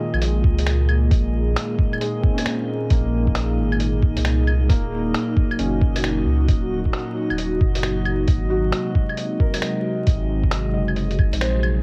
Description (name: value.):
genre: future garage.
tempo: 134 BPM.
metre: 4/4.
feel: swing 64% on 16ths.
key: Bb minor.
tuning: A4 = 440 Hz.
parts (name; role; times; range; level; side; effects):
felt-muted upright piano; accompaniment; 0.0-11.8 s; Bb2 to Eb5; -33 LUFS; equal; sidechain pumping, cassette tape, tape echo.
airy breathy pad; sustained chords; 0.0-11.8 s; Bb2 to Ab4; -27 LUFS; equal; chorus, sidechain pumping, cassette tape.
drifting glass-harmonics texture; texture; 0.0-11.8 s; Eb5; -40 LUFS; equal; chorus, built-in reverb, cassette tape.
warm sub bass; bass; 0.1-11.8 s; Eb1 to Db2; -24 LUFS; equal; sidechain pumping.
lo-fi sampler-style drum kit; drums; 0.1-11.7 s; claves, finger snaps, hi-hat; -30 LUFS; equal; cassette tape.
electronic kick drum; drums; 0.4-11.3 s; none; -21 LUFS; equal; cassette tape.
room: light reverb, digital ambience.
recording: home recording on cassette, vinyl crackle.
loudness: -21 LUFS.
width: mono.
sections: 0.0-11.8 A section.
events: band accent 11.4.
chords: 0.0 Bbm7; 4.7 Ebm7; 8.3 Ab7.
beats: 0.22 0.67 | 1.11 1.56 2.01 2.46 | 2.90 3.35 3.80 4.25 | 4.70 5.14 5.59 6.04 | 6.49 6.93 7.38 7.83 | 8.28 8.72 9.17 9.62 | 10.07 10.52 10.96 11.41.